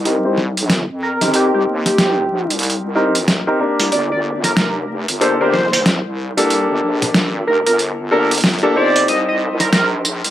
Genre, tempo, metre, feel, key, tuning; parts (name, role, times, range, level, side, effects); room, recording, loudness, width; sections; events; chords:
glitch hop; 93 BPM; 4/4; swing 61% on 16ths; C dorian; A4 = 440 Hz
wobble bass; bass; 0.0-10.3 s; F1 to F2; -22 LUFS; equal; chorus, high-pass filter
bright concert grand piano; stabs; 0.1-10.3 s; Bb3 to C5; -19 LUFS; left 1 dB; low-pass filter, ping-pong delay
boom bap sampler-style drum kit; drums; 0.1-10.3 s; hi-hat, snare drum, tambourine; -17 LUFS; equal; overdrive
sync lead; melody; 1.0-9.9 s; G4 to Eb5; -18 LUFS; equal; chorus, ping-pong delay
wet studio reverb, RT60 0.5 s; vinyl crackle, high-pass filter; -14 LUFS; side -12 dB against mid
0.0-10.3 A section
build-up 0.0-10.3; filter sweep on grand piano 0.0-10.3
0.0 Cm7; 3.9 Gmadd9; 9.1 Cm7